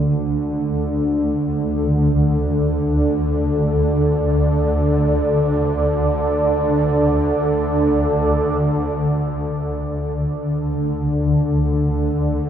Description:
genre	dark ambient drone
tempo	free time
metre	none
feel	none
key	unclear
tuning	A4 = 440 Hz
part	deep dark ambient pad	sustained chords	0.0-12.5 s	D4 to D5	-21 LUFS	right 1 dB	chorus, built-in reverb
part	swarming drone	drone	0.0-12.5 s	D2 to D3	-18 LUFS	equal	built-in reverb
part	bronze singing bowl	texture	0.0-8.7 s	none	barely audible	none	none
room	wet huge ambient reverb, RT60 7.3 s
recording	in a vast, echoing space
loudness	-16 LUFS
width	side -9 dB against mid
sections	0.0-8.6 A section; 8.6-12.5 B section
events	filter sweep on synth drone 0.0-8.6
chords	0.0 D5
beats	free time

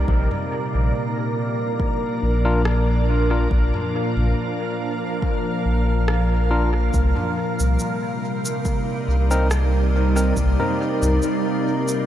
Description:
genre	ambient dub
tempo	70 BPM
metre	4/4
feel	swing 54% on 16ths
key	unclear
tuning	A4 = 440 Hz
part	soft additive organ-like pad	sustained chords	0.0-12.1 s	Bb2 to F5	-23 LUFS	right 1 dB	ensemble chorus, built-in reverb
part	warm sub bass	bass	0.0-11.2 s	Bb1 to C2	-19 LUFS	equal	none
part	drifting glass-harmonics texture	texture	0.0-12.1 s	Bb3 to Bb4	-30 LUFS	equal	chorus, built-in reverb
part	electronic kick drum	drums	0.1-10.6 s	none	-24 LUFS	equal	none
part	organic electronic drum kit	drums	0.3-12.0 s	rim click, shaker, toms	-33 LUFS	equal	dub echo
part	barky tine electric piano	stabs	2.4-12.1 s	C4 to Bb4	-28 LUFS	left 2 dB	low-pass filter, dub echo
room	moderate huge ambient reverb, RT60 7.7 s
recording	dreamy mix soaked in reverb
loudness	-18 LUFS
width	side -11 dB against mid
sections	0.0-12.1 A section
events	none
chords	0.1 Bb; 6.9 Cm7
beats	| 0.08 0.94 1.80 2.65 | 3.51 4.37 5.22 6.08 | 6.94 7.80 8.65 9.51 | 10.37 11.22

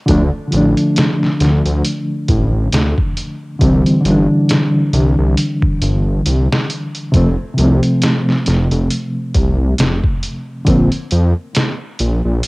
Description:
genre	trip hop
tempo	68 BPM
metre	4/4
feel	swing 57% on 16ths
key	D minor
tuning	A4 = 438 Hz
part	reed electric piano	accompaniment	0.1-10.9 s	C3 to D4	-16 LUFS	equal	medium tremolo, cassette tape, tape echo
part	dark detuned saw bass	bass	0.1-12.4 s	F1 to F2	-15 LUFS	equal	none
part	trip hop sampler-style drum kit	drums	0.1-12.5 s	hi-hat, kick drum, snare drum	-18 LUFS	equal	small room ambience, cassette tape
room	light reverb, digital ambience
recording	home recording on cassette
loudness	-12 LUFS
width	side -24 dB against mid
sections	0.0-12.5 A section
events	none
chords	0.1 Dm; 3.6 Cadd9; 7.1 F; 10.7 Bb5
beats	| 0.08 0.96 1.84 2.73 | 3.61 4.49 5.37 6.26 | 7.14 8.02 8.90 9.79 | 10.67 11.55 12.43

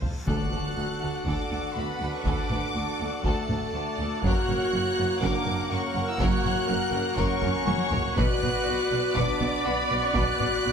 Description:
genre	cinematic, epic orchestral film score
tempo	122 BPM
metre	4/4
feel	straight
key	D major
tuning	A4 = 440 Hz
part	clear symphonic violin section	melody	0.0-10.7 s	A5 to F#6	-33 LUFS	left 1 dB	none
part	rich symphonic violin section	second line	0.0-10.7 s	F#4 to F#5	-35 LUFS	left 3 dB	none
part	clear symphonic viola section	accompaniment	0.0-10.7 s	A4 to D5	-33 LUFS	right 3 dB	none
part	clear symphonic cello section	bass	0.0-10.7 s	D2 to B2	-33 LUFS	right 3 dB	none
part	clear symphonic double bass section	bass	0.0-10.7 s	F1 to D2	-33 LUFS	right 3 dB	none
part	taiko ensemble	drums	0.0-10.6 s	none	-30 LUFS	equal	none
part	reverse cymbal and impact	sound effects	0.0-2.3 s	none	-39 LUFS	equal	none
part	mellow French horn section	sustained chords	0.3-10.7 s	A3 to F#4	-31 LUFS	left 2 dB	none
part	pipe organ, full organ	sustained chords	0.3-10.7 s	A#3 to F#5	-33 LUFS	equal	none
part	timpani	percussion	0.3-1.0 s	D3	-35 LUFS	left 1 dB	none
room	moderate scoring stage reverb, RT60 2.0 s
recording	none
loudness	-24 LUFS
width	side -7 dB against mid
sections	0.3-10.7 A section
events	drum fill 0.0, 7.4-8.2; reverse cymbal 0.0; impact 0.3-2.3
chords	0.3 D; 4.2 F#; 8.2 Bm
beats	| 0.28 0.77 1.27 1.76 | 2.26 2.75 3.25 3.74 | 4.24 4.74 5.23 5.72 | 6.21 6.70 7.19 7.68 | 8.18 8.67 9.16 9.66 | 10.16 10.65

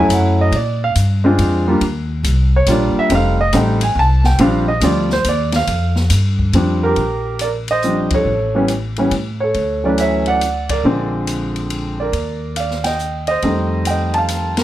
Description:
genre	jazz piano trio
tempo	140 BPM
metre	3/4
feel	swing 66% on 8ths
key	Bb major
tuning	A4 = 436 Hz
part	warm grand piano	melody	0.0-14.6 s	D3 to A5	-16 LUFS	right 1 dB	none
part	upright bass	bass	0.0-14.6 s	F1 to Bb2	-18 LUFS	equal	none
part	open jazz drum kit	drums	0.1-14.6 s	hi-hat, kick drum, ride cymbal, snare drum	-26 LUFS	left 2 dB	none
room	moderate studio reverb, RT60 0.5 s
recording	none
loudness	-14 LUFS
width	side -13 dB against mid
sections	0.0-7.0 A section; 7.0-14.6 B section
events	grand piano solo 0.0-7.0; band accent 8.0, 10.6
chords	0.0 Dmaj7 (rootless); 0.5 Bb7; 1.8 Ebmaj7; 3.1 F7; 4.4 Bb6; 8.3 A7; 9.6 Dmaj7; 10.8 Bb7; 12.1 Ebmaj7; 13.4 F7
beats	0.10 | 0.53 0.96 1.39 | 1.82 2.25 2.68 | 3.10 3.54 3.96 | 4.39 4.82 5.25 | 5.68 6.11 6.54 | 6.97 7.40 7.83 | 8.26 8.69 9.12 | 9.55 9.98 10.41 | 10.85 11.28 11.71 | 12.14 12.57 13.00 | 13.43 13.86 14.29

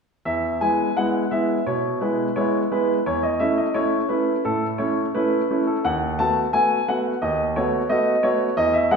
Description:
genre	classical-period piano sonatina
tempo	87 BPM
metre	4/4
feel	rubato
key	E major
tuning	A4 = 440 Hz
part	clear baby grand piano	solo	0.3-9.0 s	D#2 to A5	-19 LUFS	equal	none
room	wet recital hall reverb, RT60 1.4 s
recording	heard from further back in the room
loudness	-19 LUFS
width	side -5 dB against mid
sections	0.3-9.0 A section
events	none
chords	0.3 E; 3.1 A/E; 5.8 B7/D#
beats	| 0.27 0.97 1.67 2.37 | 3.06 3.75 4.44 5.14 | 5.84 6.53 7.21 7.90 | 8.57

